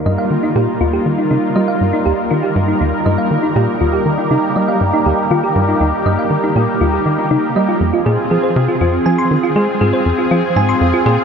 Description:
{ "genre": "ambient, sequencer-driven space music", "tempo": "120 BPM", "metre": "4/4", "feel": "straight", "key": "unclear", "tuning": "A4 = 439 Hz", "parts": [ { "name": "lush unison pad", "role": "sustained chords", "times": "0.0-11.2 s", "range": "G3 to Bb4", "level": "-16 LUFS", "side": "equal", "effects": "chorus, phaser" }, { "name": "thumb-piano-like synth pluck", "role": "arpeggios", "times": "0.1-11.2 s", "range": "Eb4 to C6", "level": "-19 LUFS", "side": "right 1 dB", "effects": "chorus, auto-pan, analog delay" }, { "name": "tight sequencer bass", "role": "riff", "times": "0.1-11.2 s", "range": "Eb2 to Ab3", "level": "-17 LUFS", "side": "equal", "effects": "analog delay" } ], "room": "moderate plate reverb, RT60 3.4 s", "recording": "none", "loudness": "-13 LUFS", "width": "side -6 dB against mid", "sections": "0.0-11.2 A section", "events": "filter sweep on synth arpeggio sound 0.0-11.2", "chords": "0.0 Ebadd9; 7.8 Fm" }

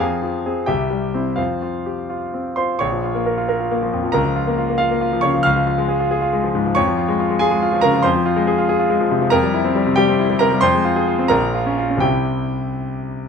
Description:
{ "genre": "classical, virtuoso piano study", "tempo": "82-94 BPM (dotted quarters)", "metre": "6/8", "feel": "rubato", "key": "Bb minor, F minor from 8.1 s", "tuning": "A4 = 440 Hz", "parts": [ { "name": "clear concert grand piano", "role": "solo", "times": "0.0-13.3 s", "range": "Bb1 to F6", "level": "-16 LUFS", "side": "left 1 dB", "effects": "none" } ], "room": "light reverb", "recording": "minimal, uncompressed stereo recording", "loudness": "-16 LUFS", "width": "side -6 dB against mid", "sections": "0.0-2.8 A section; 2.8-13.3 B section", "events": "none", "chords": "0.0 Fm; 0.7 C; 1.4 F5; 2.8 Bbm; 4.2 Bbm/Db; 5.5 Db; 6.8 Db/F; 8.1 Fm; 9.3 C7/F; 10.6 Fm; 11.3 Bbm; 12.0 C" }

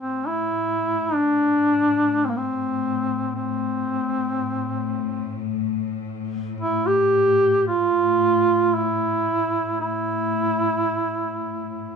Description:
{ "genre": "caucasian folk, Caucasian lament", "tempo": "55 BPM", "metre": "3/4", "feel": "rubato", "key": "A minor", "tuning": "A4 = 440 Hz", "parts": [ { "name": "warm duduk", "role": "melody", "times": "0.0-12.0 s", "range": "Bb3 to G4", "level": "-20 LUFS", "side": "right 1 dB", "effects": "none" }, { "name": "rich symphonic cello section", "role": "drone", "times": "0.0-12.0 s", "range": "A2", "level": "-28 LUFS", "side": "left 7 dB", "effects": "none" } ], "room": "moderate studio ambience, RT60 0.5 s", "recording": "band playing live in one room", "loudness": "-20 LUFS", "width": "side -6 dB against mid", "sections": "0.0-12.0 A section", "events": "none", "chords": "none" }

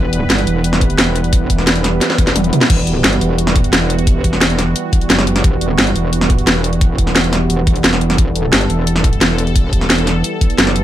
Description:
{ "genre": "dark technical drum and bass", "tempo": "175 BPM", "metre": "4/4", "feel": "straight", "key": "E minor", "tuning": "A4 = 440 Hz", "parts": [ { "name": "sweeping resonant pad", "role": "sustained chords", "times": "0.0-10.8 s", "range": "E3 to B4", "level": "-20 LUFS", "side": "right 2 dB", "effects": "chorus, sidechain pumping" }, { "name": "metallic wobble bass", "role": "bass", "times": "0.0-10.8 s", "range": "E1 to G1", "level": "-17 LUFS", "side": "equal", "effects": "chorus, tube saturation, sidechain pumping" }, { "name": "drum and bass drum kit", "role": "drums", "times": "0.1-10.8 s", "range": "crash cymbal, hi-hat, snare drum, toms", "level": "-15 LUFS", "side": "equal", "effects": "none" }, { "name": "electronic kick drum", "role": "drums", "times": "0.8-10.5 s", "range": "none", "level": "-14 LUFS", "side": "equal", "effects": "none" } ], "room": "light reverb", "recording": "none", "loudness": "-12 LUFS", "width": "side -12 dB against mid", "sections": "0.0-10.8 A section", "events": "drum fill 2.0-2.7", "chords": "0.0 Emadd9" }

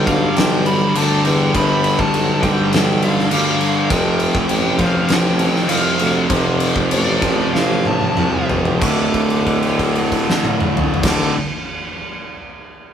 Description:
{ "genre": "stoner and doom metal", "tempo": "92-102 BPM", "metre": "4/4", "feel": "straight", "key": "D dorian", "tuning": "A4 = 440 Hz", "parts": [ { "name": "fuzz lead guitar", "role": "melody", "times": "0.0-11.3 s", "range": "D5 to D6", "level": "-24 LUFS", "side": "equal", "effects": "wah, distortion" }, { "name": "ensemble organ-string", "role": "sustained chords", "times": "0.0-11.3 s", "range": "D3 to A4", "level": "-30 LUFS", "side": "left 2 dB", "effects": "none" }, { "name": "distorted electric guitar", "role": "riff", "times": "0.0-11.3 s", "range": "D2 to G3", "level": "-21 LUFS", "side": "equal", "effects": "overdrive" }, { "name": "thick fuzz guitar", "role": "riff", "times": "0.0-11.3 s", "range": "D2 to G3", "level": "-23 LUFS", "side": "left 4 dB", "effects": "distortion" }, { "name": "thick fuzz guitar", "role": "riff", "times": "0.0-11.3 s", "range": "D2 to G3", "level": "-22 LUFS", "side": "right 6 dB", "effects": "distortion" }, { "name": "warm tuba", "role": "bass", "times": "0.0-11.3 s", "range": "D1 to E2", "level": "-22 LUFS", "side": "equal", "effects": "tube saturation" }, { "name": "oversized low-tuned drum kit", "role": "drums", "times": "0.1-11.2 s", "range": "crash cymbal, kick drum, snare drum, toms", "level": "-20 LUFS", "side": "left 1 dB", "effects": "none" } ], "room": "light reverb", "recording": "rough rehearsal-room recording", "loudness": "-14 LUFS", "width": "side -8 dB against mid", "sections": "0.0-8.8 A section; 8.8-11.4 B section", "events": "slowing down 3.9-8.8; drum fill 7.5-8.8; held note 8.8-11.0", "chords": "0.0 G; 3.9 F; 8.8 D5" }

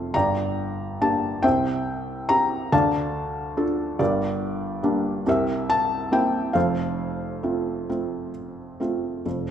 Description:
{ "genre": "classical, lyrical solo piano", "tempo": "47 BPM (dotted quarters)", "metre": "6/8", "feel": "rubato", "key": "F major", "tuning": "A4 = 440 Hz", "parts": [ { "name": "felt-muted upright piano", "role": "solo", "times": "0.0-9.5 s", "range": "F1 to C6", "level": "-22 LUFS", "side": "equal", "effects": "none" } ], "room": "moderate scoring stage reverb, RT60 1.9 s", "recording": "minimal, uncompressed stereo recording", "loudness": "-22 LUFS", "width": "side -9 dB against mid", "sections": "0.0-9.3 A section", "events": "none", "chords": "0.1 Gm; 1.4 C; 2.7 Dm; 4.0 Gm; 5.3 C7; 6.6 F" }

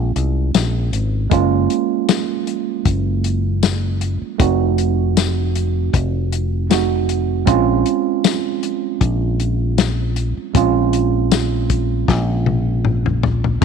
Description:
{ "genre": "straight-eighth soul blues", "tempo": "78 BPM", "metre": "4/4", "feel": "swing 55% on 16ths", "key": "Bb minor", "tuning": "A4 = 440 Hz", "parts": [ { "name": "tine electric piano", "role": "accompaniment", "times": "0.0-13.6 s", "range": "Ab3 to Gb4", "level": "-20 LUFS", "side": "right 14 dB", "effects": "none" }, { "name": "fingered electric bass", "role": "bass", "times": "0.0-13.6 s", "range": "F1 to C2", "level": "-18 LUFS", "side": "left 1 dB", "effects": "none" }, { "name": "warm soul drum kit", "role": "drums", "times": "0.2-13.6 s", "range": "crash cymbal, hi-hat, kick drum, snare drum, tambourine, toms", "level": "-18 LUFS", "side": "left 7 dB", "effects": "none" } ], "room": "light reverb, studio ambience", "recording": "1960s-style stereo with parts hard left and right", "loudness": "-16 LUFS", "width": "side -6 dB against mid", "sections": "0.0-13.6 A section", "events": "drum fill 12.1-13.6", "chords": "0.0 Bbm7; 1.3 Gbmaj7; 4.4 F7b9; 7.5 Bbm7" }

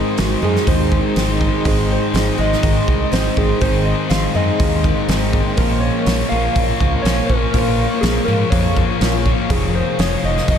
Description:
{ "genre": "rock, shoegaze and dream pop", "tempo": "122 BPM", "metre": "4/4", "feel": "straight", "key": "Ab major", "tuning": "A4 = 440 Hz", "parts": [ { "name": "soft struck synth lead", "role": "melody", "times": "0.0-10.6 s", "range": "Gb4 to F5", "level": "-23 LUFS", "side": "equal", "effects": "chorus, analog delay" }, { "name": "hollow soft pad", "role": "sustained chords", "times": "0.0-10.6 s", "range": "Ab4 to Eb6", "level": "-26 LUFS", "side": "right 1 dB", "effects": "chorus" }, { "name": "picked twelve-string acoustic guitar", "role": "arpeggios", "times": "0.0-10.6 s", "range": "Eb3 to Db4", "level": "-29 LUFS", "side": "left 6 dB", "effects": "wide subtle chorus, analog delay" }, { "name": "electric guitar through a small old amp", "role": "riff", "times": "0.0-10.6 s", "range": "F2 to Ab4", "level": "-25 LUFS", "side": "right 8 dB", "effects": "reverse reverb" }, { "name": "thick fuzz guitar", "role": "riff", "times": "0.0-10.6 s", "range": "F2 to Bb3", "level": "-21 LUFS", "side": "left 7 dB", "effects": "distortion, lush chorus" }, { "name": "growling fingered electric bass", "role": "bass", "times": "0.2-10.6 s", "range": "F1 to Ab2", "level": "-20 LUFS", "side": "right 1 dB", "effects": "overdrive" }, { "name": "loose indie drum kit", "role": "drums", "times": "0.2-10.6 s", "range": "hi-hat, kick drum, snare drum", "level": "-20 LUFS", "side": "right 1 dB", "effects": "none" } ], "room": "moderate huge ambient reverb, RT60 7.8 s", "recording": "dreamy mix soaked in reverb", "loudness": "-14 LUFS", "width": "side -8 dB against mid", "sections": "0.0-10.6 A section", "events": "none", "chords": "0.0 Ab; 5.6 Bbm; 9.5 Fm7" }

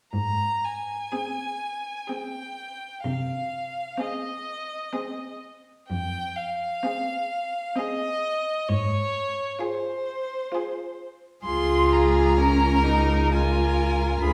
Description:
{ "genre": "classical, slow romantic movement for string quartet", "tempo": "64 BPM", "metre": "3/4", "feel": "rubato", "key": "Ab major", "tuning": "A4 = 439 Hz", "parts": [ { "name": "clear violin", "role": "melody", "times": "0.1-14.3 s", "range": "C5 to C6", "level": "-31 LUFS", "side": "equal", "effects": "none" }, { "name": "rich cello", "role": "bass", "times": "0.1-14.3 s", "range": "Db2 to C3", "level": "-27 LUFS", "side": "equal", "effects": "none" }, { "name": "clear violin", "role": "second line", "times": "1.1-14.3 s", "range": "Ab4 to Bb4", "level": "-32 LUFS", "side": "equal", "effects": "none" }, { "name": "rich viola", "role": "accompaniment", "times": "1.1-14.3 s", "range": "C4 to F4", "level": "-29 LUFS", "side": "equal", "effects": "none" } ], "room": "wet recital hall reverb, RT60 1.2 s", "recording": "heard from further back in the room", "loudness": "-26 LUFS", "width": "mono", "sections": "0.1-14.3 A section", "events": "none", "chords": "0.1 Ab; 3.0 Ab/C; 5.9 Fm; 8.7 Fm/Ab; 11.5 Bbm7/Db" }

